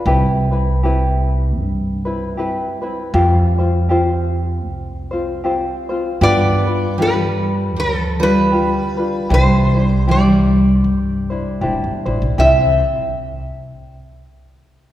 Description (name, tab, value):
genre	Hawaiian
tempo	78 BPM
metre	4/4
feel	swing 58% on 8ths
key	C major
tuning	A4 = 439 Hz
part	tenor ukulele	accompaniment	0.0-12.8 s	C4 to C5	-21 LUFS	left 1 dB	none
part	upright bass	bass	0.1-12.8 s	E1 to G2	-18 LUFS	equal	none
part	metal-body resonator slide guitar	melody	6.2-12.8 s	A4 to E5	-18 LUFS	equal	none
part	picked steel-string acoustic guitar	second line	6.2-12.8 s	F3 to C4	-19 LUFS	equal	none
room	wet concert hall reverb, RT60 2.3 s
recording	heard from further back in the room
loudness	-14 LUFS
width	side -13 dB against mid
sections	0.0-12.4 A section; 12.4-14.9 B section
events	none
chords	0.1 Cmaj7; 3.1 Fsus2; 6.2 G7; 9.3 Cadd9